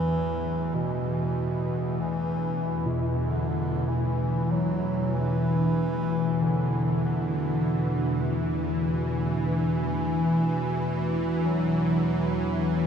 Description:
dark ambient drone; 47 BPM; 4/4; straight; A4 = 440 Hz
mellow bass clarinet; melody; 0.0-12.9 s; B2 to F#3; -29 LUFS; equal; tape echo
deep dark ambient pad; sustained chords; 0.4-12.9 s; E3 to F#4; -31 LUFS; left 1 dB; chorus, built-in reverb
bowed-like drone; drone; 0.0-12.9 s; E2 to E3; -28 LUFS; equal; built-in reverb
bronze singing bowl; texture; 0.0-12.9 s; barely audible
bronze singing bowl; arpeggios; 2.9-10.4 s; B2; -31 LUFS; equal; tape echo
wet cathedral reverb, RT60 6.3 s; in a vast, echoing space; -24 LUFS; side -7 dB against mid
0.0-12.9 A section
0.0 Esus2

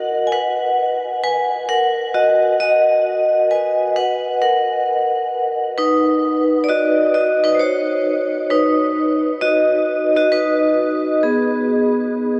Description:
hip hop; 66 BPM; 4/4; swing 66% on 16ths; A4 = 439 Hz
vibraphone with hard mallets; solo; 0.0-12.4 s; B3 to G#5; -17 LUFS; equal; cassette tape
wet huge ambient reverb, RT60 8.3 s; dreamy mix soaked in reverb, cassette tape; -17 LUFS; mono
0.0-12.4 A section
vibraphone solo 0.0-12.4
0.3 N.C.; 1.7 Bmaj7; 3.9 F#add11/A#; 5.8 B/D#; 11.2 N.C.

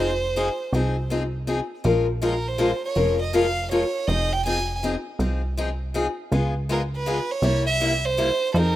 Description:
acoustic string swing (jazz manouche); 161 BPM; 3/4; swing 63% on 8ths; F minor; A4 = 438 Hz
rich violin; melody; 0.0-8.8 s; A4 to Ab5; -25 LUFS; right 3 dB
picked steel-string acoustic guitar; accompaniment; 0.0-8.8 s; C3 to Bb4; -25 LUFS; left 3 dB
plucky analog bass; bass; 0.0-8.8 s; F1 to F2; -25 LUFS; right 1 dB
small room reverb; rough home demo mix; -21 LUFS; side -14 dB against mid
0.0-8.8 A section
0.0 Fm7; 1.8 Bbm7; 4.1 Fm7; 6.3 Db7; 7.4 C7

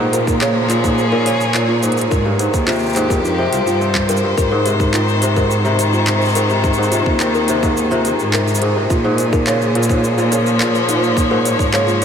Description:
folktronica; 106 BPM; 4/4; straight; A4 = 440 Hz
rich string quartet; sustained chords; 0.0-12.0 s; Eb3 to Db5; -20 LUFS; left 2 dB
kora; arpeggios; 0.0-12.0 s; G2 to G4; -19 LUFS; equal; tape echo
dark cello; bass; 0.0-12.0 s; C2 to Bb2; -19 LUFS; right 1 dB
flickering grainy texture; texture; 0.0-4.4 s; Bb4 to Bb5; -32 LUFS; right 2 dB
kalimba; second line; 0.1-12.0 s; F4 to Bb4; -23 LUFS; left 2 dB; tape echo
organic electronic drum kit; drums; 0.1-12.0 s; handclaps, hi-hat, shaker; -24 LUFS; equal
electronic kick drum; drums; 0.3-11.7 s; -20 LUFS; equal
wet huge ambient reverb, RT60 7.7 s; dreamy mix soaked in reverb; -13 LUFS; side -7 dB against mid
0.0-4.4 A section; 4.4-12.0 B section
0.0 Bbm7; 2.1 Abmaj7; 3.2 Fsus2; 4.4 Ab; 8.9 Bbm7

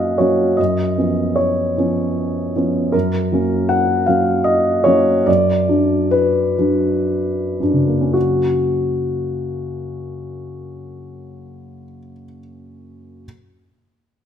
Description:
classical, romantic character piece for solo piano; 52-80 BPM; 3/4; rubato; F# major; A4 = 440 Hz
warm baby grand piano; solo; 0.0-13.3 s; F#2 to F#5; -16 LUFS; equal
moderate recital hall reverb, RT60 1.4 s; -15 LUFS; side -8 dB against mid
0.0-8.2 A section; 8.2-11.0 B section
slowing down 1.8-8.2
0.0 F#; 0.6 C#7/F#; 2.9 F#; 5.3 Bm/F#; 8.2 F#

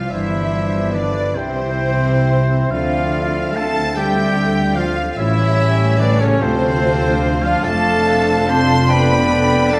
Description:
classical, slow romantic movement for symphony orchestra; 48 BPM (dotted quarters); 6/8; rubato; A4 = 440 Hz
warm symphonic violin section; melody; 0.0-9.8 s; C5 to C6; -28 LUFS; equal
clear oboe; second line; 0.0-9.8 s; C5 to C6; -29 LUFS; equal
rich symphonic violin section; second line; 0.0-9.8 s; C5 to C6; -31 LUFS; equal
silver concert flute; second line; 0.0-9.8 s; G4 to A5; -27 LUFS; equal
mellow bassoon; accompaniment; 0.0-9.8 s; C4 to F4; -27 LUFS; equal
rich studio viola section; accompaniment; 0.0-9.8 s; B3 to A4; -30 LUFS; equal
clear trombone section; sustained chords; 0.0-9.8 s; D3 to D4; -29 LUFS; equal
mellow French horn section; sustained chords; 0.0-9.8 s; C3 to C4; -24 LUFS; equal
mellow trumpet section; stabs; 0.0-9.8 s; C4 to C5; -27 LUFS; equal
rich symphonic cello section; bass; 0.0-9.8 s; D2 to D3; -25 LUFS; equal
warm symphonic double bass section; bass; 0.0-9.8 s; F1 to D2; -24 LUFS; equal
wet scoring stage reverb, RT60 1.7 s; dark, warm production; -17 LUFS; mono
0.0-9.8 A section
0.1 G7; 1.4 C; 2.7 Dm7; 5.2 A7; 6.4 Dm7; 7.6 Dm/F

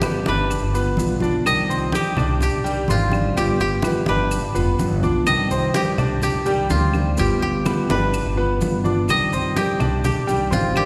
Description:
latin, Cuban son and guajira; 126 BPM; 4/4; straight; C harmonic minor; A4 = 440 Hz
koto; melody; 0.0-10.9 s; F4 to Eb5; -26 LUFS; equal
nylon-string guitar; accompaniment; 0.0-10.9 s; C3 to G4; -27 LUFS; equal
bright grand piano; arpeggios; 0.0-10.9 s; G3 to G6; -29 LUFS; equal
claves; percussion; 0.0-10.9 s; -41 LUFS; equal
congas; percussion; 0.0-10.9 s; -28 LUFS; equal
maracas; percussion; 0.0-10.9 s; -41 LUFS; equal
upright bass; bass; 0.3-10.9 s; F1 to G2; -26 LUFS; equal
wet concert hall reverb, RT60 2.5 s; recorded in a church or concert hall; -20 LUFS; mono
0.0-10.9 A section
0.0 G7; 1.5 Cmadd9; 3.4 G7; 5.3 Cmadd9; 7.2 G7; 9.1 Cmadd9

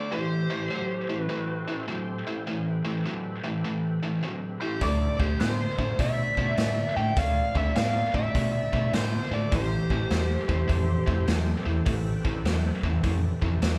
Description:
blues rock power trio and southern rock; 102 BPM; 4/4; swing 65% on 8ths; A minor; A4 = 436 Hz
bluesy overdriven lead guitar; melody; 0.0-11.2 s; C5 to G5; -33 LUFS; equal; wah, distortion
lead guitar through a small cranked amp; second line; 0.0-11.3 s; F4 to E5; -38 LUFS; equal; overdrive
overdriven tonewheel organ; sustained chords; 0.0-13.8 s; F3 to E5; -43 LUFS; equal; chorus vibrato, slow rotary speaker
tight distorted guitar; riff; 0.0-13.8 s; A2 to B3; -32 LUFS; equal; distortion
overdriven picked electric bass; bass; 4.8-13.8 s; A1 to B2; -30 LUFS; equal
raw garage drum kit; drums; 4.8-13.8 s; hi-hat, kick drum, snare drum; -32 LUFS; equal
moderate large studio reverb, RT60 1.3 s; band playing live in one room; -27 LUFS; mono
0.0-13.8 A section
0.1 Am9; 4.8 Dm9; 9.5 Am9

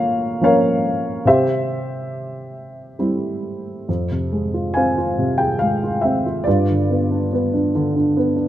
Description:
classical, lyrical solo piano; 70 BPM; 3/4; rubato; A4 = 442 Hz
dark upright piano; solo; 0.0-8.5 s; F2 to Ab5; -17 LUFS; equal
moderate scoring stage reverb, RT60 1.8 s; -17 LUFS; side -12 dB against mid
0.0-3.9 A section; 3.9-8.5 B section
0.0 Bbm; 1.3 C; 3.9 Fm; 6.5 G7

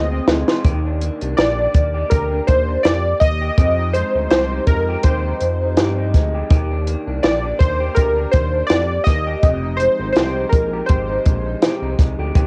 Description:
indie pop, bedroom pop; 82 BPM; 4/4; swing 55% on 16ths; Eb major; A4 = 440 Hz
warm analog keys; melody; 0.0-11.9 s; Bb4 to Eb5; -22 LUFS; equal; analog chorus
electric guitar through a small old amp; accompaniment; 0.0-12.5 s; F2 to G4; -29 LUFS; equal; lush chorus, warbly pitch drift
chorused synth bass; bass; 0.0-12.5 s; F1 to G2; -25 LUFS; equal
compact cocktail drum kit; drums; 0.3-12.5 s; hi-hat, kick drum, snare drum; -18 LUFS; equal; cassette tape
little or no reverb; home recording on cassette; -18 LUFS; mono
0.6-12.5 A section
drum fill 0.0-0.6
0.0 Bb9sus4; 0.6 Ebmaj9; 3.6 Fm9; 6.5 Ebmaj9; 9.4 Fm9

